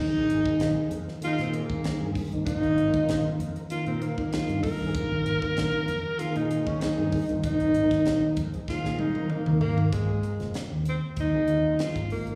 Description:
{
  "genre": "electric jazz fusion",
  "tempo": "97 BPM",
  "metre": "4/4",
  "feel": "straight",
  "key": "unclear",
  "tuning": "A4 = 439 Hz",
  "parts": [
    { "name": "breathy tenor saxophone", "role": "melody", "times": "0.0-12.4 s", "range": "Ab3 to Bb4", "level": "-30 LUFS", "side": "equal", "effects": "slapback echo" },
    { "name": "tonewheel organ", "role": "accompaniment", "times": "0.0-12.4 s", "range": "Eb3 to Bb4", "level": "-32 LUFS", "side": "equal", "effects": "slow rotary speaker, overdrive, chorus vibrato, slapback echo" },
    { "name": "mellow fretless electric bass", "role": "bass", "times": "0.0-12.4 s", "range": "F1 to Bb2", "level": "-32 LUFS", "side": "equal", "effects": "none" },
    { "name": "crisp fusion drum kit", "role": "drums", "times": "0.3-12.4 s", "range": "hi-hat, kick drum, snare drum, toms", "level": "-35 LUFS", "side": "equal", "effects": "none" }
  ],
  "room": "light reverb, studio reverb",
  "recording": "live gig heard through the venue's PA, recital hall reverb",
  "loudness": "-27 LUFS",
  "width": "mono",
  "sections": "0.0-9.9 A section; 9.9-12.4 B section",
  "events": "drum fill 8.7-9.9",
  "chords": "0.0 Bb9sus4; 9.9 F7sus4"
}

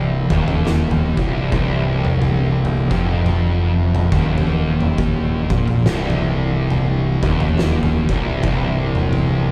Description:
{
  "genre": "stoner and doom metal",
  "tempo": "69 BPM",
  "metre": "4/4",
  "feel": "swing 60% on 8ths",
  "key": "C minor",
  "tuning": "A4 = 438 Hz",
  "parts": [
    { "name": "thick fuzz guitar", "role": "riff", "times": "0.0-9.5 s", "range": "C2 to Bb2", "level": "-25 LUFS", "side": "equal", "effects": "distortion" },
    { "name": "thick fuzz guitar", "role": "riff", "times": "0.0-9.5 s", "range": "C2 to Bb2", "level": "-23 LUFS", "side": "equal", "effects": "distortion" },
    { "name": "fuzz fingered electric bass", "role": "bass", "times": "0.0-9.5 s", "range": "C1 to Bb1", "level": "-25 LUFS", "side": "equal", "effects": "overdrive" },
    { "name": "oversized low-tuned drum kit", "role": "drums", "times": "0.3-9.3 s", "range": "kick drum, snare drum, toms", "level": "-23 LUFS", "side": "equal", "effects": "none" }
  ],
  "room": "wet large studio reverb, RT60 1.5 s",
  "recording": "band playing live in one room",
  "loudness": "-18 LUFS",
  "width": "mono",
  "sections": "0.0-9.5 A section",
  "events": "none",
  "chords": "0.0 Cm"
}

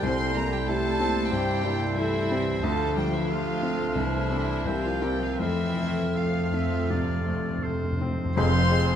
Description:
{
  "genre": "classical, romantic movement for piano and orchestra",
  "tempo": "78-94 BPM",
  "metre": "4/4",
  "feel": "rubato",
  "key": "F major",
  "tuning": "A4 = 439 Hz",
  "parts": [
    { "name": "warm chamber violin section", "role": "melody", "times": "0.0-9.0 s", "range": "E5 to C6", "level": "-34 LUFS", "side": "right 1 dB", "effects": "none" },
    { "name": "warm grand piano", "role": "melody", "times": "0.0-9.0 s", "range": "F1 to Bb4", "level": "-29 LUFS", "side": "left 3 dB", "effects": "none" },
    { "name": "clear oboe", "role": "second line", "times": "0.0-9.0 s", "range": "C5 to F5", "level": "-37 LUFS", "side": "right 1 dB", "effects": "none" },
    { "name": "dark clarinet", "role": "second line", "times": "0.0-8.9 s", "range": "C4 to C5", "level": "-38 LUFS", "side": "equal", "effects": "none" },
    { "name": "silver concert flute", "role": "second line", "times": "0.0-8.8 s", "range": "C6 to G6", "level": "-38 LUFS", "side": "right 1 dB", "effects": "none" },
    { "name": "warm symphonic violin section", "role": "second line", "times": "0.0-9.0 s", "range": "C4 to C5", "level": "-37 LUFS", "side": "left 1 dB", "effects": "none" },
    { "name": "dark bassoon", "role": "accompaniment", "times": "0.0-8.9 s", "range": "G3 to Bb3", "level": "-35 LUFS", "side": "right 2 dB", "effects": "none" },
    { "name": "dark symphonic viola section", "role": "accompaniment", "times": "0.0-9.0 s", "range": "F3 to F4", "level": "-35 LUFS", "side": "right 2 dB", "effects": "none" },
    { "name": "warm French horn section", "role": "sustained chords", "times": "0.0-9.0 s", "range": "C4 to C5", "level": "-35 LUFS", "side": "left 4 dB", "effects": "none" },
    { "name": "warm symphonic cello section", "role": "bass", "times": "0.0-9.0 s", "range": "F2 to C4", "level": "-34 LUFS", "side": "right 2 dB", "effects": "none" },
    { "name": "warm symphonic double bass section", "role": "bass", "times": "0.0-9.0 s", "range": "F1 to F2", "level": "-32 LUFS", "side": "right 3 dB", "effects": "none" },
    { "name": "timpani", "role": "percussion", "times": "4.0-9.0 s", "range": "F2 to C3", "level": "-32 LUFS", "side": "left 1 dB", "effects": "none" },
    { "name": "mellow trumpet section", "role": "stabs", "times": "8.4-9.0 s", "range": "C5", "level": "-31 LUFS", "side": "left 1 dB", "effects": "none" }
  ],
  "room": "moderate scoring stage reverb, RT60 1.5 s",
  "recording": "none",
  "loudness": "-24 LUFS",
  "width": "side -9 dB against mid",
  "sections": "0.0-8.4 A section",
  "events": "timpani fill 5.4-8.4",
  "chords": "0.0 C; 2.6 Dm7; 4.0 F/C; 4.7 C7; 5.4 F; 8.4 Fm"
}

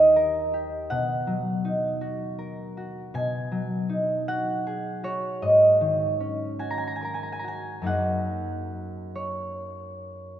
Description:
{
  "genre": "classical, solo harp piece",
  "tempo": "42-55 BPM (dotted quarters)",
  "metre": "6/8",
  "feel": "rubato",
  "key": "unclear",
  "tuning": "A4 = 440 Hz",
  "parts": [
    { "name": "concert harp", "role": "solo", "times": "0.0-10.4 s", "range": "D#2 to A#5", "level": "-23 LUFS", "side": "right 1 dB", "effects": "none" }
  ],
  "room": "wet church reverb, RT60 3.2 s",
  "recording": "none",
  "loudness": "-24 LUFS",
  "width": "side -11 dB against mid",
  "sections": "0.0-10.4 A section",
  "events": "none",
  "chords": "0.0 D#6; 0.9 Bmaj7; 3.2 G#m7/B; 5.4 G#9sus4"
}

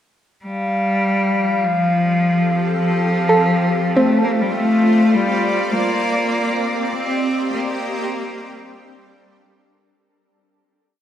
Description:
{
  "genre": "ambient",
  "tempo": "50 BPM",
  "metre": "4/4",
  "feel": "straight",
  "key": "unclear",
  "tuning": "A4 = 440 Hz",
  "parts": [
    { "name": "clear cello", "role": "melody", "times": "0.4-9.3 s", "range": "F3 to C4", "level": "-18 LUFS", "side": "left 1 dB", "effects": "shimmer reverb" },
    { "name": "glass harmonica", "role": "texture", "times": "0.4-10.0 s", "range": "F5", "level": "-25 LUFS", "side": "left 1 dB", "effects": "shimmer reverb" },
    { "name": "shimmering ambient pad", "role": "sustained chords", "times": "1.5-10.0 s", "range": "F3 to Eb5", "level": "-24 LUFS", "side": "right 1 dB", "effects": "chorus, built-in reverb, shimmer reverb" },
    { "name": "soft round pluck", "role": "arpeggios", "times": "3.3-9.2 s", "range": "C4 to A4", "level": "-20 LUFS", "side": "right 1 dB", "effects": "chorus, shimmer reverb, diffuse ambient delay" }
  ],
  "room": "wet concert hall reverb, RT60 2.1 s",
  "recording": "none",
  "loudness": "-16 LUFS",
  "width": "side -10 dB against mid",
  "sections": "0.5-10.0 A section",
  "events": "fade-in on ambient pad 0.5-10.0; fade-out on glass harmonica 0.5-10.0; fade-out 5.2-10.0",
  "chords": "0.5 F; 2.9 F69; 5.2 Cm7; 7.6 Gm7"
}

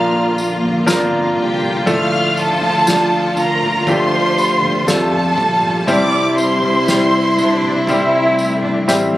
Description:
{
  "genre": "pop ballad",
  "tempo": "60 BPM",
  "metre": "4/4",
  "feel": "straight",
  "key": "unclear",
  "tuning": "A4 = 440 Hz",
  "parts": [
    { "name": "rich studio violin section", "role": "melody", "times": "0.0-8.4 s", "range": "G4 to F6", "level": "-18 LUFS", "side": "equal", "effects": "none" },
    { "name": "bright concert grand piano", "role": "accompaniment", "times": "0.0-9.2 s", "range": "G2 to C5", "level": "-17 LUFS", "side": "left 1 dB", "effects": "none" },
    { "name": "warm studio string section", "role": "sustained chords", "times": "0.0-9.2 s", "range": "C3 to F4", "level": "-20 LUFS", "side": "equal", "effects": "none" },
    { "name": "fingered electric bass", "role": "bass", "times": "0.0-9.2 s", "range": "G1 to F2", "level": "-23 LUFS", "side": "equal", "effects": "none" },
    { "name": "tambourine", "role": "percussion", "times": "0.4-9.1 s", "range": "none", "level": "-29 LUFS", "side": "right 1 dB", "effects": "none" },
    { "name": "soft-mallet drum kit", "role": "drums", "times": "0.6-9.2 s", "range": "kick drum, snare drum, toms", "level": "-25 LUFS", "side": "equal", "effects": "none" },
    { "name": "warm studio cello section", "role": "second line", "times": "7.4-9.2 s", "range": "C4 to E4", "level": "-19 LUFS", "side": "equal", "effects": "none" }
  ],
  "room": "light reverb",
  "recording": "recorded on a phone in the room, club reverb, compression",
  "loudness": "-13 LUFS",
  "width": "side -15 dB against mid",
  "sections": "0.0-9.2 A section",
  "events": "drum fill 8.9-9.2",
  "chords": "0.0 Bb; 1.9 Dm; 5.9 C"
}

